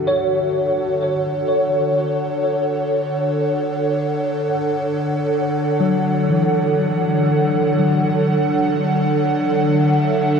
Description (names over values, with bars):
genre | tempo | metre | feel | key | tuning
ambient | 62 BPM | 4/4 | straight | D major | A4 = 444 Hz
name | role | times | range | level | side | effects
airy breathy pad | sustained chords | 0.0-10.4 s | D3 to F#5 | -18 LUFS | right 1 dB | chorus
bell-like tine electric piano | arpeggios | 0.0-10.4 s | E3 to C#5 | -21 LUFS | left 1 dB | ensemble chorus, diffuse ambient delay
room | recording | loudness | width
wet huge ambient reverb, RT60 8.7 s | dreamy mix soaked in reverb | -16 LUFS | side -6 dB against mid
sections
0.0-10.4 A section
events
fade-in on analog synth pad 0.0-10.4; fade-out on tine electric piano 0.0-10.4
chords
0.0 Dadd9